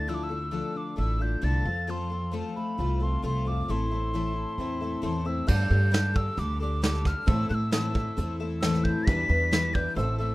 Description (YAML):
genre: indie folk with a building arrangement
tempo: 134 BPM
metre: 4/4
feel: straight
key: A minor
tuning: A4 = 439 Hz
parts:
  - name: mellow hollow wooden whistle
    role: melody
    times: 0.0-10.3 s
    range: B5 to B6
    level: -32 LUFS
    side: equal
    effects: none
  - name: fingerpicked plugged-in steel-string acoustic guitar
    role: accompaniment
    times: 0.0-5.5 s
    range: F2 to A4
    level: -35 LUFS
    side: left 3 dB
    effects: none
  - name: picked twelve-string acoustic guitar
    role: accompaniment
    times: 0.0-10.3 s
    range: A2 to B4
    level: -33 LUFS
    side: left 3 dB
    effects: none
  - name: upright bass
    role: bass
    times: 0.0-10.3 s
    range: A1 to A2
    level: -28 LUFS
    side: equal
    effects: none
  - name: warm upright piano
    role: accompaniment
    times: 5.5-10.3 s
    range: G1 to D5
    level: -39 LUFS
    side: right 2 dB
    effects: none
  - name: vintage brush drum kit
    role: drums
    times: 5.5-10.1 s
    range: crash cymbal, hi-hat, kick drum, snare drum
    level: -28 LUFS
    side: right 1 dB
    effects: none
room: little or no reverb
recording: rough home demo mix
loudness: -25 LUFS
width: side -18 dB against mid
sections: 0.0-5.5 A section; 5.5-10.3 B section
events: none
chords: 0.0 Dmadd9; 1.7 F; 3.7 Am; 5.5 Gsus2; 7.3 Am; 9.1 Em7